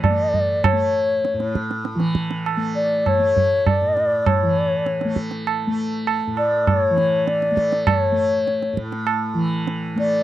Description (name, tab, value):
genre	indian classical, Hindustani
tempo	100 BPM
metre	3/4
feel	straight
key	unclear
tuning	A4 = 441 Hz
part	mellow hollow bansuri	melody	0.0-10.2 s	C#5 to D5	-19 LUFS	left 2 dB	none
part	tanpura	drone	0.0-10.2 s	A2 to A3	-25 LUFS	equal	none
part	tabla	percussion	0.0-10.2 s	none	-22 LUFS	right 4 dB	none
room	little or no reverb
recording	dry, close 1970s-style studio recording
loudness	-18 LUFS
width	side -13 dB against mid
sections	0.0-10.2 A section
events	none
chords	none